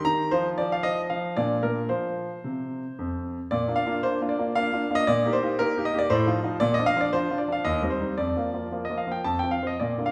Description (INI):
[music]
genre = classical-period piano sonatina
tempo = 114 BPM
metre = 3/4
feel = rubato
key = Bb major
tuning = A4 = 441 Hz
[part]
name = clear concert grand piano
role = solo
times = 0.0-10.1 s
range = Eb2 to Bb5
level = -26 LUFS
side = equal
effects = none
[sound]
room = wet recital hall reverb, RT60 1.7 s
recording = heard from further back in the room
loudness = -26 LUFS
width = mono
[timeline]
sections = 0.0-3.5 A section; 3.5-10.1 B section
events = none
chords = 0.3 Cmadd11/F; 1.4 Bb; 1.9 F5; 3.5 Bb; 5.1 Eb/Bb; 6.1 F7/A; 6.6 Bb; 7.6 Cm/Eb; 8.2 Bb/F; 9.2 F5